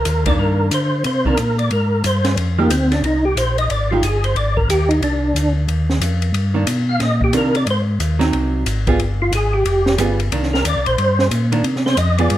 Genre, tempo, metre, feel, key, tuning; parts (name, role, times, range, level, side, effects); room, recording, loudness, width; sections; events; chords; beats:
soul jazz organ trio; 181 BPM; 4/4; swing 63% on 8ths; C minor; A4 = 439 Hz
percussive tonewheel organ; melody; 0.0-12.4 s; Bb3 to F5; -19 LUFS; equal; slow rotary speaker, chorus vibrato
mellow tonewheel organ; bass; 0.0-12.4 s; F1 to D3; -18 LUFS; equal; chorus vibrato, slow rotary speaker
open jazz drum kit; drums; 0.1-12.4 s; hi-hat, kick drum, ride cymbal, snare drum; -24 LUFS; left 1 dB
hollow-body jazz guitar; accompaniment; 0.3-4.0, 6.5-12.4 s; Eb3 to Ab4; -22 LUFS; right 3 dB
moderate large studio reverb, RT60 1.2 s; -15 LUFS; side -13 dB against mid
0.0-12.4 A section
tonewheel organ solo 0.0-12.4
0.0 Cm9; 2.4 Fm9; 5.0 Cm9; 7.7 Ab7; 9.0 G7b9; 10.3 Cm9
0.06 0.39 0.72 | 1.05 1.38 1.71 2.04 | 2.37 2.70 3.04 3.37 | 3.70 4.03 4.36 4.69 | 5.02 5.35 5.68 6.01 | 6.34 6.67 7.00 7.34 | 7.67 8.00 8.33 8.66 | 8.99 9.32 9.65 9.98 | 10.31 10.64 10.97 11.31 | 11.64 11.97 12.30